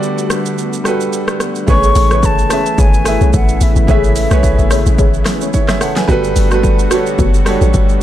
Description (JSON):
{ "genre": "amapiano", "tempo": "109 BPM", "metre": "4/4", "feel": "swing 55% on 16ths", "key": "A major", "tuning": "A4 = 441 Hz", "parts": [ { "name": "warm grand piano", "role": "accompaniment", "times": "0.0-8.0 s", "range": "G3 to G#5", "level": "-18 LUFS", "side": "right 3 dB", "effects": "none" }, { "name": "lush unison pad", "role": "sustained chords", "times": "0.0-8.0 s", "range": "C#3 to F#4", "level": "-21 LUFS", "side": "left 1 dB", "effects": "chorus" }, { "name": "deep house drum kit", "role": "drums", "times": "0.0-8.0 s", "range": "hi-hat, kick drum, rim click, shaker, snare drum", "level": "-16 LUFS", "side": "equal", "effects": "none" }, { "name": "breathy mellow silver concert flute", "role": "melody", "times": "1.7-5.3 s", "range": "E5 to C#6", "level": "-19 LUFS", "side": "left 3 dB", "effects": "tape echo" }, { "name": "deep mellow chord stab", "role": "stabs", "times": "1.7-7.7 s", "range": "F#4 to C#5", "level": "-21 LUFS", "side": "equal", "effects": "chorus, phaser, tape echo" }, { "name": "deep log drum bass", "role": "bass", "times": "1.7-8.0 s", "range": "F#1 to B1", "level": "-13 LUFS", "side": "equal", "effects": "none" } ], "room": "little or no reverb", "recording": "dark, warm production", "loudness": "-10 LUFS", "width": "side -12 dB against mid", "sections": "0.0-1.7 A section; 1.7-8.0 B section", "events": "break 0.0-1.7", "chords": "0.0 Gmaj9; 1.7 Amaj9; 6.1 Gmaj9" }